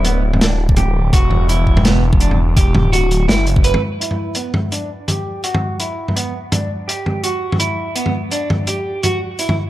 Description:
half-time drum and bass; 167 BPM; 4/4; swing 55% on 16ths, half-time; E minor; A4 = 440 Hz
clean electric guitar; arpeggios; 0.0-9.6 s; B3 to B4; -21 LUFS; right 2 dB; phaser, low-pass filter, dub echo
phased detuned saw bass; bass; 0.0-3.7 s; D1 to F#1; -15 LUFS; equal; phaser
crunchy breakbeat drum kit; drums; 0.0-9.6 s; hi-hat, snare drum, toms; -19 LUFS; equal
electronic kick drum; drums; 0.7-3.6 s; -13 LUFS; equal
light reverb, small room ambience; -14 LUFS; side -15 dB against mid
0.0-4.0 A section; 4.0-9.7 B section
break 3.6-4.0; filter sweep on clean electric guitar 4.0-9.7
0.0 Emadd9
0.05 0.41 0.77 | 1.13 1.49 1.85 2.21 | 2.57 2.93 3.29 3.65 | 4.00 4.36 4.72 5.08 | 5.44 5.80 6.16 6.52 | 6.88 7.24 7.60 7.96 | 8.32 8.68 9.04 9.39

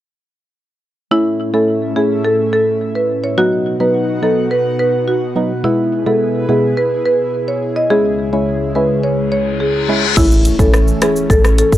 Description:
dancehall; 106 BPM; 4/4; straight; A4 = 440 Hz
marimba with medium mallets; melody; 1.1-11.7 s; E4 to D#5; -16 LUFS; equal; analog delay
percussive organ stab; accompaniment; 1.1-11.3 s; B2 to E4; -18 LUFS; equal; chorus
airy breathy pad; sustained chords; 1.2-11.8 s; C#2 to F#5; -20 LUFS; equal; chorus, sidechain pumping
reverse cymbal and impact; sound effects; 9.5-11.8 s; -22 LUFS; left 3 dB
sub bass with octave; bass; 10.2-11.8 s; A1; -14 LUFS; equal
pop drum kit; drums; 10.2-11.8 s; crash cymbal, hi-hat, kick drum, rim click, shaker; -14 LUFS; equal
little or no reverb; dry, gritty hardware recording; -12 LUFS; side -13 dB against mid
1.1-10.2 A section; 10.2-11.8 B section
reverse cymbal 9.5-10.2; impact 10.2-11.8
1.1 A; 3.4 B; 5.6 E/B; 7.9 C#m; 10.2 A
| 1.11 1.68 2.25 2.81 | 3.38 3.94 4.51 5.08 | 5.64 6.21 6.77 7.34 | 7.91 8.47 9.04 9.60 | 10.17 10.74 11.30

